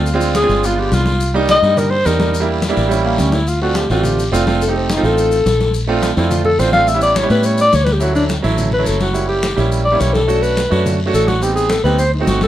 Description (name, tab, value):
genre	Afro-Cuban jazz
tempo	212 BPM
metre	4/4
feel	straight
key	D major from 8.0 s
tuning	A4 = 440 Hz
part	breathy alto saxophone	melody	0.0-12.5 s	Bb3 to F5	-16 LUFS	left 1 dB	plate reverb
part	clear concert grand piano	accompaniment	0.0-12.5 s	F#3 to G4	-19 LUFS	right 4 dB	none
part	fingered electric bass	bass	0.0-12.5 s	F1 to A2	-18 LUFS	equal	none
part	congas	percussion	0.1-12.5 s	none	-24 LUFS	left 2 dB	none
part	guiro	percussion	0.1-12.5 s	none	-29 LUFS	left 3 dB	none
part	maracas	percussion	0.1-12.5 s	none	-31 LUFS	left 5 dB	none
room	moderate club reverb, RT60 0.5 s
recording	none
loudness	-13 LUFS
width	side -12 dB against mid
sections	0.0-8.0 A section; 8.0-12.5 A section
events	alto saxophone solo 0.0-12.5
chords	0.1 Dm7b5; 0.6 G7b9; 1.2 Cm7; 2.3 Em7b5; 2.9 A7b9; 3.5 Dm7; 4.6 F9; 5.7 Bbmaj9; 6.9 A9; 8.0 Dmaj9; 9.2 F#7b9; 10.3 Bm9; 11.4 Am7b5